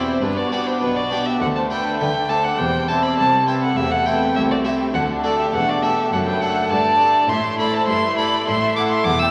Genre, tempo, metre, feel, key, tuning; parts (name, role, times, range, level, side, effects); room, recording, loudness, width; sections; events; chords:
classical, baroque-style concerto movement with solo episodes; 102 BPM; 4/4; straight; A4 = 440 Hz
rich symphonic violin section; melody; 0.0-9.3 s; C4 to E4; -32 LUFS; equal
rich violin; melody; 0.0-9.3 s; B4 to E6; -22 LUFS; equal
rich chamber violin section; second line; 0.0-9.3 s; D4 to G5; -30 LUFS; equal
harpsichord; accompaniment; 0.0-9.3 s; C2 to A4; -25 LUFS; equal
rich chamber viola section; accompaniment; 0.0-9.3 s; G3 to C4; -30 LUFS; equal
warm chamber cello section; bass; 0.0-9.3 s; C2 to D3; -32 LUFS; equal
warm chamber double bass section; bass; 0.0-9.3 s; E1 to D2; -37 LUFS; equal
wet scoring stage reverb, RT60 1.7 s; vinyl crackle; -19 LUFS; mono
0.0-9.3 A section
0.2 G; 1.4 D5; 2.6 C/E; 3.8 Am/E; 4.9 D; 7.3 A5